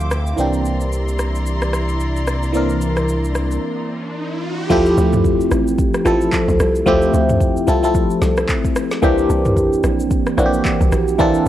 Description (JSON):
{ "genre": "amapiano", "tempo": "111 BPM", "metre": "4/4", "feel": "swing 58% on 16ths", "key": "D minor", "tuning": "A4 = 440 Hz", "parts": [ { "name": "barking FM electric piano", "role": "accompaniment", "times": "0.0-11.5 s", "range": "E3 to C6", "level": "-17 LUFS", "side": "equal", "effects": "phaser" }, { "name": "dark studio string section", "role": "sustained chords", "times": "0.0-4.7 s", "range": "F3 to D6", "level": "-28 LUFS", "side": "left 1 dB", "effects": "sidechain pumping" }, { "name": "round analog bass", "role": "bass", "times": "0.0-3.6 s", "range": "C2 to D2", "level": "-20 LUFS", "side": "equal", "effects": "none" }, { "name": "deep house drum kit", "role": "drums", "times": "0.0-11.5 s", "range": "crash cymbal, handclaps, kick drum, rim click, shaker, snare drum, toms", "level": "-21 LUFS", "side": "equal", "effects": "none" }, { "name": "riser", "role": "sound effects", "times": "3.5-4.7 s", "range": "none", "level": "-31 LUFS", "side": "right 2 dB", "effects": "none" }, { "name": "hollow log drum bass", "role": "bass", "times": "4.7-11.5 s", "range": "A1 to D2", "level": "-20 LUFS", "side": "equal", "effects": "none" } ], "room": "digital ambience", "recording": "dry, gritty hardware recording, cassette tape", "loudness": "-15 LUFS", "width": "side -12 dB against mid", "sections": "0.0-4.7 A section; 4.7-11.5 B section", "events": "FM electric piano fill 0.0-0.4; riser 3.5-4.7; break 3.6-4.7; drop 4.7-11.5", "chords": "0.4 C9; 4.7 Dm11; 9.0 C9" }